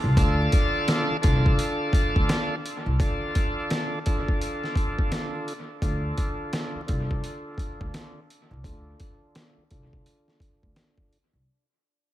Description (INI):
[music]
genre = hip hop, boom-bap hip-hop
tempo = 85 BPM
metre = 4/4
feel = swing 62% on 16ths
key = D minor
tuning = A4 = 436 Hz
[part]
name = upright bass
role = bass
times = 0.0-11.4 s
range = C2 to D2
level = -25 LUFS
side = equal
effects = none
[part]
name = overdriven tonewheel organ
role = accompaniment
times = 0.2-11.2 s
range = D3 to A4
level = -29 LUFS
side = equal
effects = slow rotary speaker, high-pass filter, low-pass filter, dub echo
[part]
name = trip hop sampler-style drum kit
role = drums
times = 0.2-11.3 s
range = hi-hat, kick drum, snare drum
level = -25 LUFS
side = equal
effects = none
[sound]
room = digital ambience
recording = echo-heavy mix, vinyl crackle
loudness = -23 LUFS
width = side -14 dB against mid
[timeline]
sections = 0.2-11.5 A section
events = fade-out 0.2-11.5; filter sweep on tonewheel organ 0.2-11.5; break 3.0-5.8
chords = 0.2 Dm